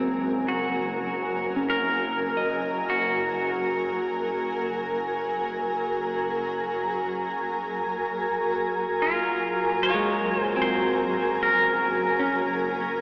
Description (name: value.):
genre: ambient.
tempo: 74 BPM.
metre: 4/4.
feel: straight.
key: Gb lydian.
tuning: A4 = 439 Hz.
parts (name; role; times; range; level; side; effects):
granular cloud pad; sustained chords; 0.0-13.0 s; Gb3 to Bb5; -29 LUFS; equal; built-in reverb.
semi-hollow electric guitar; arpeggios; 0.0-4.6, 9.9-13.0 s; Ab3 to Eb5; -33 LUFS; equal; tape echo.
clear symphonic double bass section; bass; 0.0-13.0 s; Gb1; -42 LUFS; equal; none.
pedal steel guitar; melody; 0.5-13.0 s; F4 to Db5; -30 LUFS; equal; tape echo.
analog drone; drone; 8.2-13.0 s; Db3 to Gb3; -46 LUFS; equal; none.
room: wet cathedral reverb, RT60 5.8 s.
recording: in a vast, echoing space, cassette tape, AM radio sound.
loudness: -26 LUFS.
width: mono.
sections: 0.0-8.2 A section; 8.2-13.0 B section.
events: fade-in on double bass section 8.2-13.0.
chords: 0.0 Gb; 8.2 Gbmaj7.